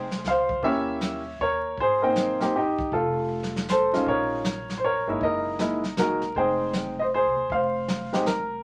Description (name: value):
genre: jazz piano trio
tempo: 157 BPM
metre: 3/4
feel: swing 65% on 8ths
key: F minor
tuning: A4 = 440 Hz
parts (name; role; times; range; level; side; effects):
- clear upright piano; melody; 0.0-8.6 s; Ab3 to G5; -26 LUFS; equal; none
- upright bass; bass; 0.0-8.6 s; F1 to Eb2; -40 LUFS; equal; none
- jazz brush drum kit; drums; 0.1-8.6 s; brushed snare drum, hi-hat, kick drum, snare drum; -34 LUFS; equal; none
room: moderate small room reverb, RT60 0.6 s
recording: vinyl crackle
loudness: -25 LUFS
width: mono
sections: 0.0-8.6 A section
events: none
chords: 0.0 Fm; 0.6 Eb7b9; 1.8 Abmaj7; 2.9 F; 4.1 Bbm7; 5.2 Gb13; 6.4 Fm9